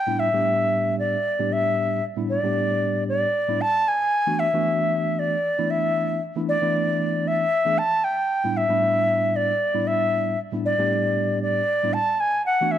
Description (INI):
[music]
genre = jazz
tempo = 115 BPM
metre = 4/4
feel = straight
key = unclear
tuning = A4 = 440 Hz
[part]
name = reedy silver concert flute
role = melody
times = 0.0-12.8 s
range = D5 to A5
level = -21 LUFS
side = equal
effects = none
[part]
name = tine electric piano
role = accompaniment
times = 0.1-12.8 s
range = A2 to G#4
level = -26 LUFS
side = right 1 dB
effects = medium stereo tremolo
[sound]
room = moderate large studio reverb, RT60 1.2 s, studio ambience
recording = dark, warm production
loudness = -20 LUFS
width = side -10 dB against mid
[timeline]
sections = 0.0-12.8 A section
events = none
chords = 0.0 A9sus4; 3.6 E9sus4; 7.8 A9sus4; 12.0 E9sus4